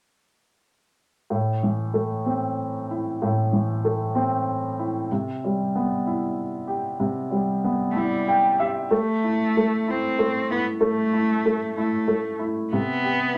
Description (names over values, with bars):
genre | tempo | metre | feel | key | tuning
six-eight pop ballad | 63 BPM (dotted quarters) | 6/8 | straight | unclear | A4 = 441 Hz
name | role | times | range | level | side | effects
warm upright piano | accompaniment | 1.3-13.4 s | A2 to G5 | -25 LUFS | equal | none
warm cello | melody | 7.9-13.4 s | G3 to C4 | -27 LUFS | equal | none
room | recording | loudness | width
wet studio reverb, RT60 0.5 s | none | -24 LUFS | mono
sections
1.3-8.9 A section; 8.9-13.4 B section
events
upright piano fill 8.0-8.9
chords
1.3 Am; 5.1 Cmaj7; 8.9 A5; 12.7 Cmaj7(no3)